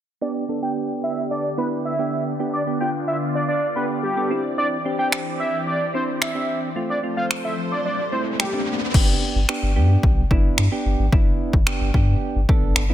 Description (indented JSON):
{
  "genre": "dance-pop",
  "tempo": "110 BPM",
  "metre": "4/4",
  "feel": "straight",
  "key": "unclear",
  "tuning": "A4 = 439 Hz",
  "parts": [
    { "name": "fat analog lead", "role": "melody", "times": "0.2-8.8 s", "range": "G4 to G5", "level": "-25 LUFS", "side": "equal", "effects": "low-pass filter" },
    { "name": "soft electric-piano-like synth keys", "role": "accompaniment", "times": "0.2-12.9 s", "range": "A3 to A4", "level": "-26 LUFS", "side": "right 3 dB", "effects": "chorus, tremolo, sidechain pumping, low-pass filter" },
    { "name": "lush unison pad", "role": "sustained chords", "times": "0.2-8.9 s", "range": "D3 to D5", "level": "-29 LUFS", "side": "left 2 dB", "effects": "chorus, phaser, sidechain pumping, low-pass filter" },
    { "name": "deep house drum kit", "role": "drums", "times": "5.1-12.9 s", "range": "crash cymbal, finger snaps, kick drum", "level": "-20 LUFS", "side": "equal", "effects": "overdrive, soft clipping on snare" },
    { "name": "riser", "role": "sound effects", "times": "7.3-8.9 s", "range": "none", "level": "-30 LUFS", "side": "left 2 dB", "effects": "none" },
    { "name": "warm sub bass", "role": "bass", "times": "8.9-12.9 s", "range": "G1 to G2", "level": "-20 LUFS", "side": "equal", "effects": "sidechain pumping" }
  ],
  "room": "light reverb, digital ambience",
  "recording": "dense, heavily limited modern master",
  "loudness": "-19 LUFS",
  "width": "side -12 dB against mid",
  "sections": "0.2-8.9 A section; 8.9-12.9 B section",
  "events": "filter sweep 0.2-8.9; riser 7.3-8.9",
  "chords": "0.2 G; 4.3 Cadd9; 6.8 F; 8.9 G",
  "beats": "| 0.22 0.76 1.31 1.85 | 2.40 2.94 3.49 4.03 | 4.58 5.12 5.67 6.22 | 6.76 7.31 7.85 8.40 | 8.94 9.49 10.03 10.58 | 11.12 11.67 12.22 12.76"
}